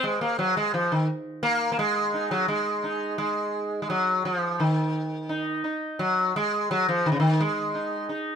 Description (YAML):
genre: indian classical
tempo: 85 BPM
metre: 5/4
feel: straight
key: Eb raga bageshri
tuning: A4 = 439 Hz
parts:
  - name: sitar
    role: solo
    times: 0.0-8.4 s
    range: Db3 to Eb4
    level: -23 LUFS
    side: equal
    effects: none
room: moderate studio reverb, RT60 0.6 s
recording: none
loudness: -23 LUFS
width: side -7 dB against mid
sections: 0.0-8.4 A section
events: none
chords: none